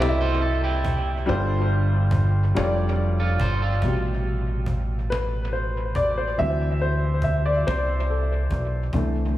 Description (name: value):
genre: slow six-eight R&B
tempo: 47 BPM (dotted quarters)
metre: 6/8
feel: straight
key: A minor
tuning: A4 = 439 Hz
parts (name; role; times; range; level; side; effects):
- electric guitar at the edge of break-up; second line; 0.0-4.0 s; E4 to D5; -31 LUFS; right 3 dB; spring reverb, dub echo
- warm baby grand piano; accompaniment; 0.0-9.4 s; B2 to E5; -25 LUFS; left 1 dB; dub echo
- deep dub fingered electric bass; bass; 0.0-9.4 s; F1 to D2; -23 LUFS; equal; none
- cajon; drums; 0.0-9.4 s; none; -33 LUFS; equal; dub echo
room: light reverb, small room ambience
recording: echo-heavy mix, studio reverb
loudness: -21 LUFS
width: side -14 dB against mid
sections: 0.0-3.8 A section; 3.8-9.4 B section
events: grand piano solo 3.8-9.4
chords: 0.0 C69; 1.3 G9sus4; 3.8 Am9; 6.4 D9